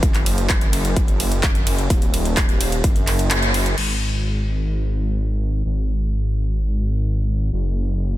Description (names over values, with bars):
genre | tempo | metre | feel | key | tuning
EDM, festival progressive house | 128 BPM | 4/4 | straight | unclear | A4 = 439 Hz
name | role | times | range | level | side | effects
wide detuned saw bass | bass | 0.0-8.2 s | D#1 to G#1 | -20 LUFS | equal | chorus, sidechain pumping
big-room dance drum kit | drums | 0.0-3.9 s | crash cymbal, handclaps, hi-hat, ride cymbal | -23 LUFS | equal | none
electronic kick drum | drums | 0.0-2.9 s | none | -18 LUFS | equal | none
room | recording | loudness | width
little or no reverb | dense, heavily limited modern master | -18 LUFS | side -15 dB against mid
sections
0.0-3.8 A section; 3.8-8.2 B section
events
drop 0.0-3.8; kick drops out 3.3-3.8; band accent 3.3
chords
none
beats
| 0.03 0.50 0.96 1.43 | 1.90 2.37 2.84 3.31 | 3.78 4.25 4.71 5.18 | 5.65 6.12 6.59 7.06 | 7.53 8.00